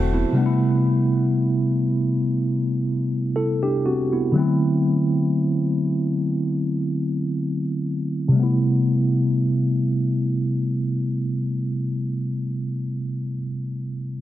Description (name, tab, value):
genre	R&B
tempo	free time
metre	none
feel	none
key	A dorian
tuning	A4 = 441 Hz
part	mellow tine electric piano	accompaniment	0.0-14.2 s	C3 to C5	-20 LUFS	equal	slow stereo tremolo, low-pass filter
room	light reverb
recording	dense, heavily limited modern master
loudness	-20 LUFS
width	side -13 dB against mid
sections	0.0-8.4 A section; 8.4-12.4 B section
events	filter sweep on tine electric piano 0.0-8.4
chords	0.4 Am9; 4.4 D9; 8.4 Am9